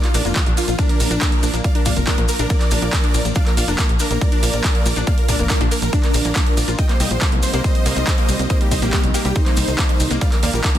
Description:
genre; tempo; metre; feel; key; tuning
uplifting trance; 140 BPM; 4/4; straight; Bb major; A4 = 441 Hz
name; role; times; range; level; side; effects
dense compressed supersaw; melody; 0.0-10.7 s; D4 to G5; -24 LUFS; equal; sidechain pumping, tape echo
lush unison pad; sustained chords; 0.0-10.8 s; C3 to Bb4; -28 LUFS; equal; chorus, sidechain pumping
punchy analog drum machine; drums; 0.0-10.8 s; handclaps, hi-hat; -24 LUFS; right 2 dB; overdrive, sidechain pumping on hats
wide unison pluck; arpeggios; 0.1-10.8 s; G3 to D5; -27 LUFS; left 2 dB; sidechain pumping, dub echo
tight sequencer bass; bass; 0.1-10.8 s; F1 to Eb2; -21 LUFS; equal; sidechain pumping
maracas; percussion; 0.1-10.7 s; none; -30 LUFS; left 4 dB; none
electronic kick drum; drums; 0.4-10.7 s; none; -18 LUFS; equal; overdrive
room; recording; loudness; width
digital ambience; dense, heavily limited modern master; -15 LUFS; side -12 dB against mid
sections
0.0-10.8 A section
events
none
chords
0.0 Bb; 6.8 Cm7; 10.2 Ebadd9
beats
0.36 0.79 1.22 | 1.64 2.07 2.50 2.93 | 3.36 3.79 4.21 4.64 | 5.07 5.50 5.93 6.36 | 6.79 7.21 7.64 8.07 | 8.50 8.93 9.36 9.79 | 10.21 10.64

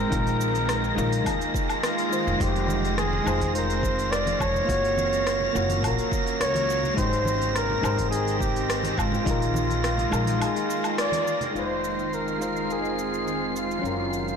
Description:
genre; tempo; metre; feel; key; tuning
sunset chillout; 105 BPM; 4/4; straight; F minor; A4 = 437 Hz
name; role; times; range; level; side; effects
breathy flugelhorn; melody; 0.0-14.4 s; F4 to D5; -28 LUFS; equal; digital delay
soft electric-piano-like synth keys; accompaniment; 0.0-14.4 s; Gb3 to Db5; -30 LUFS; moving between left 4 dB and right 3 dB; chorus, auto-pan, low-pass filter, ping-pong delay
shimmering ambient pad; sustained chords; 0.0-14.4 s; Db3 to G5; -31 LUFS; right 1 dB; chorus, built-in reverb
wind-like tuned noise texture; texture; 0.0-14.4 s; Bb6 to C7; -33 LUFS; equal; built-in reverb
upright bass; bass; 0.1-14.4 s; F1 to Ab2; -29 LUFS; equal; none
deep house drum kit; drums; 0.1-14.4 s; hi-hat, rim click, shaker, woodblock; -32 LUFS; equal; soft clipping on snare
electronic kick drum; drums; 0.1-9.4 s; none; -30 LUFS; equal; none
congas; percussion; 2.7-11.5 s; none; -37 LUFS; right 2 dB; none
room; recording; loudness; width
moderate lush hall reverb, RT60 1.9 s, digital ambience; blown-out, overdriven recording, overdrive; -22 LUFS; side -6 dB against mid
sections
0.0-11.6 A section; 11.6-14.4 B section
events
band accent 11.0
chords
0.1 Fm7; 4.7 Gbmaj7; 7.0 Abmaj7; 9.3 Bb7sus4; 11.6 Fm7; 13.8 Gbmaj7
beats
| 0.12 0.69 1.26 1.84 | 2.41 2.98 3.55 4.12 | 4.69 5.26 5.84 6.41 | 6.98 7.55 8.12 8.69 | 9.27 9.84 10.41 10.98 | 11.55 12.12 12.69 13.27 | 13.84

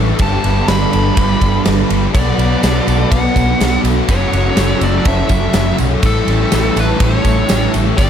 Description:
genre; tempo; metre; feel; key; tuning
rock, shoegaze and dream pop; 123 BPM; 4/4; straight; A mixolydian; A4 = 440 Hz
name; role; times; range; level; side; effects
glassy FM pad; sustained chords; 0.0-8.1 s; A4 to E6; -26 LUFS; equal; ensemble chorus, built-in reverb, phaser
twelve-string electric guitar; arpeggios; 0.0-8.1 s; E3 to A4; -25 LUFS; left 4 dB; analog chorus, digital delay
raw garage guitar; riff; 0.0-8.1 s; F#2 to G4; -20 LUFS; right 13 dB; overdrive, reverse reverb
thick fuzz guitar; riff; 0.0-8.1 s; F#2 to B3; -20 LUFS; left 9 dB; distortion, ensemble chorus
tight distorted guitar; riff; 0.0-8.1 s; F#2 to B3; -23 LUFS; left 1 dB; distortion
vintage muted fingered electric bass; bass; 0.0-8.1 s; F#1 to B1; -17 LUFS; equal; none
nasal lead guitar with a parked wah; melody; 0.2-8.1 s; A4 to B5; -21 LUFS; left 1 dB; overdrive, digital delay
big rock drum kit; drums; 0.2-8.1 s; kick drum, ride cymbal, snare drum; -18 LUFS; equal; none
tambourine; percussion; 2.1-8.1 s; none; -34 LUFS; right 9 dB; none
room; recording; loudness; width
small room ambience; none; -11 LUFS; side -8 dB against mid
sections
0.0-8.1 A section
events
none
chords
0.2 Gadd9; 2.1 Bm7; 4.1 F#m7; 6.0 A7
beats
| 0.20 0.69 1.18 1.66 | 2.15 2.63 3.12 3.61 | 4.09 4.58 5.07 5.55 | 6.04 6.53 7.01 7.50 | 7.99

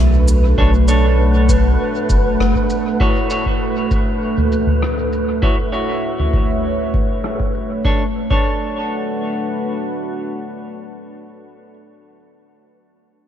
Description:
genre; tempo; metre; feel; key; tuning
ambient dub; 99 BPM; 4/4; straight; B minor; A4 = 440 Hz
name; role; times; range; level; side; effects
deep dark ambient pad; sustained chords; 0.0-11.0 s; A3 to F#5; -21 LUFS; equal; chorus, built-in reverb
soft dub sub bass; bass; 0.0-2.5 s; F#1 to B1; -14 LUFS; equal; none
wind-like tuned noise texture; texture; 0.0-7.9 s; B4; -27 LUFS; left 1 dB; built-in reverb
soft-mallet drum kit; drums; 0.3-7.7 s; rim click, shaker, toms; -23 LUFS; equal; low-pass filter on toms, low-pass filter on snare, low-pass filter on perc, low-pass filter on room
clean electric guitar; stabs; 0.6-11.7 s; D4 to C#5; -24 LUFS; right 1 dB; low-pass filter, dub echo
electronic kick drum; drums; 0.6-8.5 s; none; -19 LUFS; equal; none
room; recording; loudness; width
light reverb, small room ambience; none; -15 LUFS; side -10 dB against mid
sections
0.0-7.8 A section; 7.8-10.3 B section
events
filter sweep on drum 0.0-7.8; filter sweep on clean electric guitar 0.0-7.8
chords
0.0 Bm7; 3.0 Dmaj9; 7.8 Bm7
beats
| 0.58 1.18 1.79 2.40 | 3.00 3.61 4.21 4.82 | 5.43 6.03 6.64 7.24 | 7.85 8.46 9.06 9.67

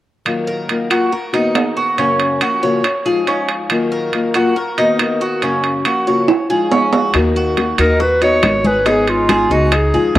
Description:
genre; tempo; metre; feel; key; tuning
latin, Cuban son and guajira; 140 BPM; 4/4; straight; Eb minor; A4 = 442 Hz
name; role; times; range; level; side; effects
nylon-string guitar; accompaniment; 0.3-10.2 s; Gb2 to Ab4; -18 LUFS; left 3 dB; cassette tape
claves; percussion; 0.3-9.9 s; none; -32 LUFS; left 6 dB; none
timbales; percussion; 0.3-10.2 s; none; -19 LUFS; right 5 dB; none
Cuban tres; arpeggios; 0.5-10.2 s; Db4 to Db5; -18 LUFS; right 1 dB; cassette tape
upright bass; bass; 7.1-10.2 s; Ab1 to F2; -19 LUFS; equal; none
bongos; percussion; 7.1-10.2 s; none; -24 LUFS; left 6 dB; none
congas; percussion; 7.1-10.2 s; none; -22 LUFS; left 1 dB; none
clear clarinet; melody; 7.8-10.2 s; F4 to Db5; -15 LUFS; equal; cassette tape
room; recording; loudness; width
wet spring reverb, RT60 2.5 s; home recording on cassette; -13 LUFS; side -14 dB against mid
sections
0.3-7.1 A section; 7.1-10.2 B section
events
drum fill 6.3-7.1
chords
0.3 Ebmadd9; 1.1 Bmaj7; 2.0 Gbmaj7; 2.8 Dbadd9; 3.7 Ebmadd9; 4.6 Bmaj7; 5.4 Gbmaj7; 6.3 Dbadd9; 7.1 Ebm; 8.0 B/D#; 8.9 Abm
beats
| 0.26 0.69 1.12 1.55 | 1.98 2.41 2.84 3.27 | 3.70 4.13 4.56 4.99 | 5.42 5.85 6.28 6.71 | 7.14 7.57 8.00 8.43 | 8.86 9.29 9.72 10.15

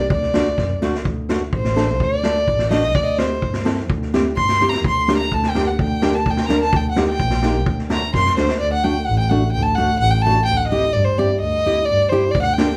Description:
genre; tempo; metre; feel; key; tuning
klezmer; 128 BPM; 2/4; straight; D phrygian dominant; A4 = 440 Hz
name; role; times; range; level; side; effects
dark violin; melody; 0.0-12.8 s; C5 to C6; -22 LUFS; equal; none
muted double bass; bass; 0.1-12.6 s; A1 to G2; -24 LUFS; equal; none
street-band drum kit; drums; 0.1-8.6, 12.3-12.7 s; kick drum, snare drum; -25 LUFS; equal; none
nylon-string guitar; accompaniment; 0.4-12.7 s; A3 to Bb4; -24 LUFS; equal; none
room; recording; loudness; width
wet studio ambience, RT60 0.5 s; heard from further back in the room; -18 LUFS; mono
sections
0.0-1.1 A section; 1.1-8.6 B section; 8.6-12.8 C section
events
drum fill 0.6-1.1, 4.6, 8.1-8.6; violin solo 1.1-8.6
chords
0.1 D; 3.0 C/D; 4.8 Gm/D; 6.7 Eb/D; 7.7 D; 10.5 C/D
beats
| 0.11 0.58 | 1.06 1.53 | 2.00 2.48 | 2.95 3.43 | 3.90 4.37 | 4.85 5.32 | 5.79 6.26 | 6.73 7.20 | 7.67 8.14 | 8.61 9.08 | 9.54 10.01 | 10.48 10.95 | 11.42 11.88 | 12.35

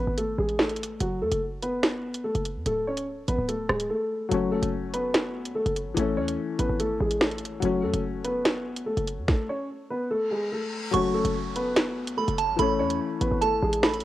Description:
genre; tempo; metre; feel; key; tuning
hip hop, drill; 145 BPM; 4/4; half-time; F# minor; A4 = 439 Hz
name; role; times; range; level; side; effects
dark concert grand piano; melody; 0.0-14.0 s; F#3 to C#5; -28 LUFS; equal; none
short 808-style bass; bass; 0.0-14.0 s; D1 to F#2; -31 LUFS; equal; none
drill drum kit; drums; 0.2-14.0 s; hi-hat, kick drum, rim click, snare drum; -26 LUFS; right 1 dB; cassette tape
felt-muted upright piano; accompaniment; 4.3-14.0 s; E3 to C#4; -30 LUFS; left 7 dB; cassette tape
reverse cymbal and downlifter; sound effects; 10.2-14.0 s; none; -41 LUFS; left 1 dB; none
delicate synth tine bell; second line; 10.9-14.0 s; A5 to C#6; -28 LUFS; right 8 dB; chorus, cassette tape, analog delay
room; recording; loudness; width
light reverb; home recording on cassette; -24 LUFS; side -14 dB against mid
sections
0.0-10.9 A section; 10.9-14.0 B section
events
break 0.0-4.3; drums muted 3.9-4.3; reverse cymbal 10.2-10.9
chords
0.0 N.C.; 1.0 F#m; 2.7 D5; 4.3 F#m; 6.0 A; 7.6 F#m; 9.3 Amaj9; 10.9 F#m; 12.6 A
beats
0.18 0.59 | 1.00 1.42 1.83 2.25 | 2.66 3.07 3.49 3.90 | 4.32 4.73 5.14 5.56 | 5.97 6.38 6.80 7.21 | 7.62 8.04 8.45 8.87 | 9.28 9.69 10.11 10.52 | 10.94 11.35 11.76 12.18 | 12.59 13.01 13.42 13.83

